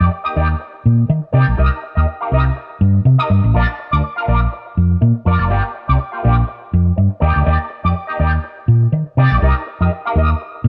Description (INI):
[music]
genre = disco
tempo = 122 BPM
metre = 4/4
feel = swing 56% on 16ths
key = C minor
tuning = A4 = 441 Hz
[part]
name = electric guitar with an envelope filter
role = accompaniment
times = 0.0-10.6 s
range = Bb3 to F5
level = -23 LUFS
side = equal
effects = wah, spring reverb
[part]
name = hollow-body short-scale fingered electric bass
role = bass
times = 0.0-10.7 s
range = F1 to Eb3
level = -15 LUFS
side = equal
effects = none
[sound]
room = little or no reverb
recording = none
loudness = -16 LUFS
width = mono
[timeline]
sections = 0.0-10.7 A section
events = none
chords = 0.0 Ebmaj7; 1.6 Cm7; 3.5 Bb; 5.5 Gm7; 7.2 Ebmaj7; 9.4 Cm7 (rootless)